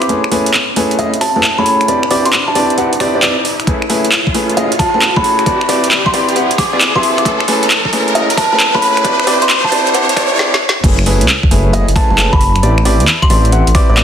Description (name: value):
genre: UK garage, two-step garage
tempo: 134 BPM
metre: 4/4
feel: swing 66% on 16ths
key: unclear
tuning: A4 = 441 Hz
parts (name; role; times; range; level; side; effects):
- buzzing kalimba; melody; 0.0-13.9 s; E5 to D6; -16 LUFS; equal; digital delay
- clear concert grand piano; stabs; 0.0-14.0 s; A3 to F#5; -16 LUFS; equal; digital delay
- garage drum kit; drums; 0.0-14.0 s; claves, crash cymbal, finger snaps, handclaps, hi-hat, snare drum; -15 LUFS; right 1 dB; overdrive
- riser; sound effects; 0.0-10.4 s; none; -19 LUFS; right 1 dB; none
- electronic kick drum; drums; 3.7-13.9 s; none; -14 LUFS; equal; overdrive
- dark detuned saw bass; bass; 10.8-14.0 s; F#1 to E2; -13 LUFS; equal; none
room: moderate digital room reverb, RT60 1.2 s, digital ambience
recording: dense, heavily limited modern master, vinyl crackle, high-pass filter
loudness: -10 LUFS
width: side -8 dB against mid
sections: 0.0-10.8 A section; 10.8-14.0 B section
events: build-up 0.0-10.8; riser 0.0-10.4; drum fill 10.4-10.8; drop 10.8-14.0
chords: 0.1 Amaj9; 1.9 Am11; 3.7 Amaj9; 5.5 Cmaj9; 7.3 Amaj9; 9.0 Am11; 10.8 F#m11; 12.6 Am11